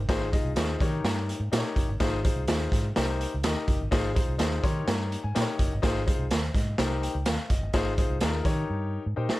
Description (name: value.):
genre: uptempo 1960s-style soul.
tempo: 126 BPM.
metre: 4/4.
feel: straight.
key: Ab major.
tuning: A4 = 440 Hz.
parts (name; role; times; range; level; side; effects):
vintage muted fingered electric bass; bass; 0.0-9.3 s; Gb1 to Eb3; -30 LUFS; equal; none.
warm concert grand piano; accompaniment; 0.1-9.4 s; Eb4 to C6; -31 LUFS; left 4 dB; none.
raw garage drum kit; drums; 0.1-9.4 s; hi-hat, kick drum, snare drum; -27 LUFS; right 1 dB; none.
room: little or no reverb.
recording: none.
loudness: -24 LUFS.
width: side -18 dB against mid.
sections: 0.0-9.4 A section.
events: grand piano fill 4.4-5.8, 8.9-9.4; drum fill 8.7-9.4.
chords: 0.1 Ab6; 0.8 Eb7; 2.0 Ab6; 3.0 Cm7; 3.9 Ab6; 4.6 Eb7; 5.8 Ab6; 6.8 Cm7; 7.7 Ab6; 8.5 Eb7.